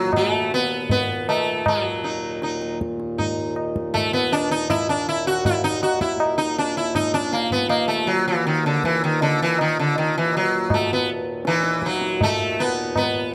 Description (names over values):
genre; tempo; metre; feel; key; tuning
indian classical, Hindustani; 80 BPM; 4/4; straight; Eb raga todi; A4 = 439 Hz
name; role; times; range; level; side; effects
sitar; melody; 0.0-13.3 s; D3 to Gb4; -23 LUFS; equal; none
pedal harmonium; drone; 0.0-13.3 s; Eb2 to Bb2; -31 LUFS; equal; none
tabla; percussion; 0.1-13.2 s; none; -28 LUFS; equal; none
room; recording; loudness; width
moderate recital hall reverb, RT60 1.5 s; close, detailed microphones; -22 LUFS; mono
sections
0.0-13.3 A section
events
none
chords
none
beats
0.13 0.89 | 1.66 2.42 3.17 3.93 | 4.69 5.45 6.20 6.96 | 7.71 8.46 9.21 9.96 | 10.71 11.46 12.21 12.96